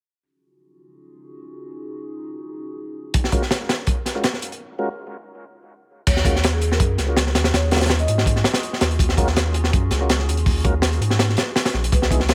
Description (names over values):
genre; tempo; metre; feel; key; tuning
drum and bass, jungle; 164 BPM; 4/4; straight; Eb minor; A4 = 443 Hz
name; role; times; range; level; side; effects
warbly tape-like pad; sustained chords; 0.8-12.3 s; Cb4 to Bb4; -37 LUFS; equal; chorus, built-in reverb
crunchy breakbeat drum kit; drums; 3.1-12.3 s; crash cymbal, hi-hat, kick drum, snare drum; -22 LUFS; equal; none
mellow tonewheel organ; stabs; 3.3-12.2 s; Gb3 to Bb4; -32 LUFS; equal; chorus vibrato, slow rotary speaker, dub echo
marimba with medium mallets; melody; 6.1-8.5, 11.9-12.1 s; Ab4 to Eb5; -32 LUFS; equal; dub echo
saturated sub bass; bass; 6.1-12.3 s; Bb1 to Ab2; -23 LUFS; equal; tube saturation
room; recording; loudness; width
small room reverb; none; -20 LUFS; mono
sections
0.2-6.1 A section; 6.1-12.3 B section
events
filter sweep on ambient pad 0.2-6.1; break 4.6-6.1; drop 6.1-12.3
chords
0.2 Ebm11